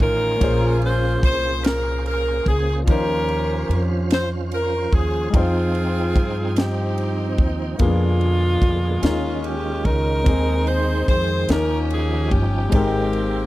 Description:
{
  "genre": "slow gospel",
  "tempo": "49 BPM (dotted quarters)",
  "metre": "6/8",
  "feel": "straight",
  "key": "unclear",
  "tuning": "A4 = 442 Hz",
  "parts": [
    { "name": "bright saxophone section", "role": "melody", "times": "0.0-13.5 s", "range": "Ab3 to C5", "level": "-24 LUFS", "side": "equal", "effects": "none" },
    { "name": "warm upright piano", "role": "accompaniment", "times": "0.0-13.5 s", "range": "Ab2 to G5", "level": "-27 LUFS", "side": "left 4 dB", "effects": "none" },
    { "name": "tonewheel organ", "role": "sustained chords", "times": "0.0-13.5 s", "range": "Cb3 to G5", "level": "-28 LUFS", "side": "right 4 dB", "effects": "slow rotary speaker, overdrive, chorus vibrato" },
    { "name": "upright bass", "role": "bass", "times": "0.0-13.5 s", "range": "G1 to G2", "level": "-22 LUFS", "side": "equal", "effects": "none" },
    { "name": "tight funk drum kit", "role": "drums", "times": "0.0-13.3 s", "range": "kick drum, ride cymbal, snare drum", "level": "-19 LUFS", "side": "equal", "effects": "none" }
  ],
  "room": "little or no reverb",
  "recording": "dry, close 1970s-style studio recording",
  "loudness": "-18 LUFS",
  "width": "side -16 dB against mid",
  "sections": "0.0-13.5 A section",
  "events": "none",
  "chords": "0.4 Bbm9; 2.9 Eb13; 5.3 Fm9; 7.8 Bb7b9/F; 9.0 Eb9sus4; 10.3 Ab/Eb; 11.5 Eb9; 12.7 Abmaj9"
}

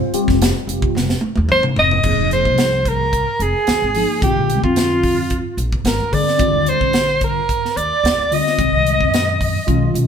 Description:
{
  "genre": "electric jazz fusion",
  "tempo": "110 BPM",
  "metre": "4/4",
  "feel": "straight",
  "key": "F dorian",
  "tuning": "A4 = 443 Hz",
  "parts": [
    { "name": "mellow tine electric piano", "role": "accompaniment", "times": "0.0-10.1 s", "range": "Bb2 to C5", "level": "-21 LUFS", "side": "left 4 dB", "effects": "phaser" },
    { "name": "upright bass", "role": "bass", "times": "0.1-10.1 s", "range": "F1 to Gb2", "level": "-21 LUFS", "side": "equal", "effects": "none" },
    { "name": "crisp fusion drum kit", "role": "drums", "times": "0.1-10.1 s", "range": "crash cymbal, hi-hat, kick drum, snare drum, toms", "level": "-21 LUFS", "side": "right 1 dB", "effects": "none" },
    { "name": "breathy soprano saxophone", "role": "melody", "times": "1.5-10.0 s", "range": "F4 to Eb5", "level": "-18 LUFS", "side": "right 1 dB", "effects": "none" },
    { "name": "silver concert flute", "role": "second line", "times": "1.5-10.0 s", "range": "F4 to Eb5", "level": "-24 LUFS", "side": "right 2 dB", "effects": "none" }
  ],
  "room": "moderate stone room reverb, RT60 1.3 s",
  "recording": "band playing live in one room",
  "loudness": "-14 LUFS",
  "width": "side -7 dB against mid",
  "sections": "0.0-2.0 A section; 2.0-10.1 B section",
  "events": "drum fill 1.0-2.0",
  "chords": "0.0 F7sus2; 2.0 Fm7; 4.2 Bb7; 6.4 Ebmaj9; 8.6 Cm7b5"
}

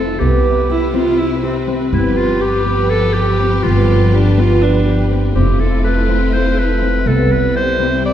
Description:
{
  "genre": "contemporary instrumental, chamber music in an uneven meter",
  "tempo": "245 BPM (eighths)",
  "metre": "7/8",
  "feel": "straight",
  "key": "unclear",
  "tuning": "A4 = 439 Hz",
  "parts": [
    { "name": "bright clarinet", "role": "melody", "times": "0.0-8.1 s", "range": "E4 to D5", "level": "-19 LUFS", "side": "equal", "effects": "none" },
    { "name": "warm studio string section", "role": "sustained chords", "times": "0.0-8.1 s", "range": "C3 to B4", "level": "-22 LUFS", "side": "equal", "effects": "none" },
    { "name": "concert harp", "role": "arpeggios", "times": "0.0-8.1 s", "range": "B3 to A4", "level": "-18 LUFS", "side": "left 2 dB", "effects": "none" },
    { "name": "upright bass", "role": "bass", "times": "0.0-8.1 s", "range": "F1 to C2", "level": "-16 LUFS", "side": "equal", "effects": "none" },
    { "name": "warm viola", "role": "second line", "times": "0.7-5.2 s", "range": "C4 to F4", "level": "-18 LUFS", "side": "right 3 dB", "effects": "none" }
  ],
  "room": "wet scoring stage reverb, RT60 1.4 s",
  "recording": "heard from further back in the room",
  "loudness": "-12 LUFS",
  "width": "side -10 dB against mid",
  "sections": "0.0-8.1 A section",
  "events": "none",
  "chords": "0.2 Cmaj7; 1.9 G7; 5.4 Fmaj7; 7.1 Cmaj7"
}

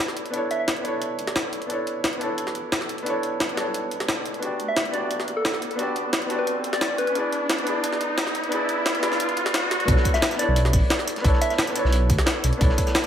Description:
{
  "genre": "liquid drum and bass",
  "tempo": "176 BPM",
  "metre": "4/4",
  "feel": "straight",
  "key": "B minor",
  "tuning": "A4 = 440 Hz",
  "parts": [
    { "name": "felt-muted upright piano", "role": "accompaniment", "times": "0.0-13.1 s", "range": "B3 to D5", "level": "-27 LUFS", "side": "equal", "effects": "digital delay" },
    { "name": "riser", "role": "sound effects", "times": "1.5-9.9 s", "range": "none", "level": "-30 LUFS", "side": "right 1 dB", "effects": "none" },
    { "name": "jungle sampler-style drum kit", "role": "drums", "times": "0.1-13.1 s", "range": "hi-hat, snare drum, tambourine", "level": "-26 LUFS", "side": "equal", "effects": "none" },
    { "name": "dark detuned saw bass", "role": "bass", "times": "0.3-12.7 s", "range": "D1 to E2", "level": "-24 LUFS", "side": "equal", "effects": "high-pass filter" },
    { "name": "soft struck synth lead", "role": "melody", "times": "0.5-0.7, 4.7-7.2, 10.1-11.6 s", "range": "A4 to E5", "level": "-28 LUFS", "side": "equal", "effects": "chorus, digital delay" },
    { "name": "crunchy breakbeat drum kit", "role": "drums", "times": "9.9-13.1 s", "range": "hi-hat, snare drum", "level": "-33 LUFS", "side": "equal", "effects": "high-pass filter on hats, high-pass filter on snare, high-pass filter on room" },
    { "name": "electronic kick drum", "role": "drums", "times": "9.9-12.8 s", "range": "none", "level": "-22 LUFS", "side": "equal", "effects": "none" }
  ],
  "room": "moderate recital hall reverb, RT60 1.4 s, small room ambience",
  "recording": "high-pass filter",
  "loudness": "-21 LUFS",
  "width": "side -9 dB against mid",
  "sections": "0.0-9.9 A section; 9.9-13.1 B section",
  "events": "build-up 0.0-9.9; riser 1.5-9.9; drop 9.9-13.1",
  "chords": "0.0 Bm11; 4.4 Gmaj7; 7.2 E7; 9.9 Bm11"
}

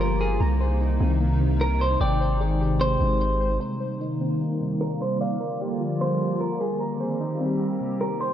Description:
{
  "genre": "hip hop",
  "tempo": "150 BPM",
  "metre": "4/4",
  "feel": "half-time",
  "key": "C minor",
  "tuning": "A4 = 440 Hz",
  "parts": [
    { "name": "clean electric guitar", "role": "melody", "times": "0.0-8.3 s", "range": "Ab4 to D5", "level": "-28 LUFS", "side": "equal", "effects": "low-pass filter, digital delay" },
    { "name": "hollow soft pad", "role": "sustained chords", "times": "0.0-8.3 s", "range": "C3 to G4", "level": "-26 LUFS", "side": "equal", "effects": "ensemble chorus, low-pass filter" },
    { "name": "muted felt-like synth keys", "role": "arpeggios", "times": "0.0-8.3 s", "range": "C3 to Bb5", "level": "-31 LUFS", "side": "left 2 dB", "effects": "chorus, low-pass filter, digital delay" },
    { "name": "long sustained 808-style bass", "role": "bass", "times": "0.0-3.6 s", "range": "G1 to C2", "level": "-23 LUFS", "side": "equal", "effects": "none" }
  ],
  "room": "light reverb",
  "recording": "worn, warbling old tape, cassette tape, warbly pitch drift",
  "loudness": "-22 LUFS",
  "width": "side -10 dB against mid",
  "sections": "0.0-3.6 A section; 3.6-8.3 B section",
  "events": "none",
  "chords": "0.4 Cm7; 2.0 Abmaj7; 3.6 Cm7; 5.2 Gm7; 6.8 Cm7"
}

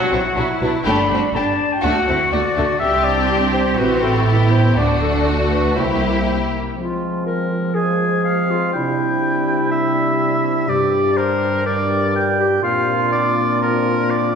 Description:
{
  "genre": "cinematic, heroic adventure film score",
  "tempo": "123 BPM",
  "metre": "4/4",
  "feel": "straight",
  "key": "F dorian from 6.8 s",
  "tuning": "A4 = 440 Hz",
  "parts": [
    { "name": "clear symphonic violin section", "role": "melody", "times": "0.0-6.6 s", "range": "D4 to G4", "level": "-25 LUFS", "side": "left 4 dB", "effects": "none" },
    { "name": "warm clarinet", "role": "second line", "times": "0.0-14.3 s", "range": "E4 to B5", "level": "-21 LUFS", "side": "left 1 dB", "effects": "none" },
    { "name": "warm symphonic violin section", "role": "second line", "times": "0.0-6.6 s", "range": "A3 to E4", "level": "-26 LUFS", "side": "left 1 dB", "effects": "none" },
    { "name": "clear studio viola section", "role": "accompaniment", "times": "0.0-6.6 s", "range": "F#3 to C4", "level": "-24 LUFS", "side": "right 2 dB", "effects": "none" },
    { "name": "rich symphonic cello section", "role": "bass", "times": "0.0-6.5 s", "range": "D4 to G4", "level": "-22 LUFS", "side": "right 1 dB", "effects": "none" },
    { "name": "clear symphonic double bass section", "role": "bass", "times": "0.1-6.6 s", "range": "G1 to D2", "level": "-21 LUFS", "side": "right 1 dB", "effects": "none" },
    { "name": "bright trombone section", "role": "sustained chords", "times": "6.8-14.4 s", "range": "G2 to F3", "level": "-22 LUFS", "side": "right 1 dB", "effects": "none" },
    { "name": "warm French horn section", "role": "sustained chords", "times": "6.8-14.4 s", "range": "G3 to D4", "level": "-24 LUFS", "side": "left 4 dB", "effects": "none" },
    { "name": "clear oboe", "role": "second line", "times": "7.8-14.4 s", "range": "Bb4 to Ab5", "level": "-21 LUFS", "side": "right 1 dB", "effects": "none" }
  ],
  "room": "wet scoring stage reverb, RT60 1.6 s",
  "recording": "heard from further back in the room",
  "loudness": "-15 LUFS",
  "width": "side -6 dB against mid",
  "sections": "0.0-6.8 A section; 6.8-14.4 B section",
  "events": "none",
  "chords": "0.0 Bm; 0.9 Gadd9; 1.8 D; 2.8 Csus2; 3.8 Am7; 4.8 D; 5.8 C7; 6.8 Fm; 8.7 Cadd9; 10.7 Gm; 12.6 Bbadd9"
}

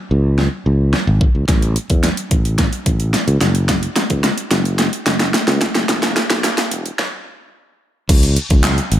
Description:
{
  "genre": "dance-pop",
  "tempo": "109 BPM",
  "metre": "4/4",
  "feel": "straight",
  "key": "C# minor",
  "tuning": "A4 = 440 Hz",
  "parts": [
    { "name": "sustaining fretless electric bass", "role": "bass", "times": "0.1-9.0 s", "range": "E1 to E2", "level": "-17 LUFS", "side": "equal", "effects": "sidechain pumping" },
    { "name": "pop drum kit", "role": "drums", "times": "0.4-9.0 s", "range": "crash cymbal, handclaps, hi-hat, kick drum, snare drum", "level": "-16 LUFS", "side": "equal", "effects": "overdrive" }
  ],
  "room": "light reverb",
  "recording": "high-pass filter",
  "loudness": "-14 LUFS",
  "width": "side -12 dB against mid",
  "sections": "0.0-8.1 A section",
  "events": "build-up 0.0-8.1; drum fill 0.0-7.0; filter sweep 0.0-8.1; stop 7.0-8.1",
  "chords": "none"
}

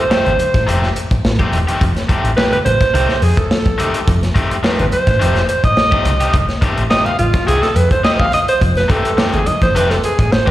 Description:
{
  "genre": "funk",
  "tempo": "106 BPM",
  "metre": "4/4",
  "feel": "straight",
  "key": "F mixolydian",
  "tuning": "A4 = 440 Hz",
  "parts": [
    { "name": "breathy alto saxophone", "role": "melody", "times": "0.0-10.5 s", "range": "F4 to F5", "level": "-16 LUFS", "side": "right 1 dB", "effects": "slapback echo" },
    { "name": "crunchy overdriven guitar", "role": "accompaniment", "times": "0.1-10.5 s", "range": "Eb3 to G4", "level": "-21 LUFS", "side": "left 3 dB", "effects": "slapback echo" },
    { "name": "fingered electric bass", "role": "bass", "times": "0.1-10.4 s", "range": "E1 to F2", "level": "-17 LUFS", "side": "equal", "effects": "none" },
    { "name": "crunchy breakbeat drum kit", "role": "drums", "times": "0.1-10.5 s", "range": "hi-hat, kick drum, snare drum", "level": "-17 LUFS", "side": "equal", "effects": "none" },
    { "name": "congas", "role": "percussion", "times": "0.1-10.5 s", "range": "none", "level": "-26 LUFS", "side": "right 3 dB", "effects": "slapback echo" }
  ],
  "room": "light reverb, small room ambience",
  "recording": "live gig heard through the venue's PA, recital hall reverb",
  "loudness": "-12 LUFS",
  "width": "side -14 dB against mid",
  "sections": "0.0-10.5 A section",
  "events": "alto saxophone solo 0.0-10.5",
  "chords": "0.0 F9"
}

